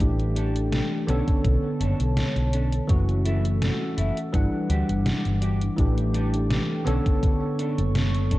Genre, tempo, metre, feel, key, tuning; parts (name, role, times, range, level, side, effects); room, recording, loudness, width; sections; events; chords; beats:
vaporwave; 83 BPM; 4/4; swing 54% on 16ths; B minor; A4 = 440 Hz
bell-like tine electric piano; accompaniment; 0.0-8.4 s; D3 to F#5; -26 LUFS; equal; analog chorus, tape echo
warbly tape-like pad; sustained chords; 0.3-8.4 s; G3 to E6; -37 LUFS; equal; chorus, built-in reverb
woody fretless electric bass; bass; 0.0-8.4 s; F#1 to D2; -24 LUFS; equal; tube saturation
detuned 8-bit digital drum machine; drums; 0.0-8.4 s; hi-hat, snare drum; -30 LUFS; equal; vintage 12-bit sampler grit, gated reverb
electronic kick drum; drums; 0.0-8.4 s; -22 LUFS; equal; vintage 12-bit sampler grit
mellow electric guitar; riff; 0.4-8.4 s; C#4 to A4; -36 LUFS; right 2 dB; lush chorus, tape echo
light reverb; cassette tape; -21 LUFS; side -17 dB against mid
0.0-8.4 A section
0.0 A7sus4; 1.1 Bm9; 2.9 F#m7; 4.3 Em9/G; 5.8 A7sus4; 6.9 Bm9
| 0.00 0.72 1.45 2.17 | 2.89 3.62 4.34 5.06 | 5.79 6.51 7.23 7.95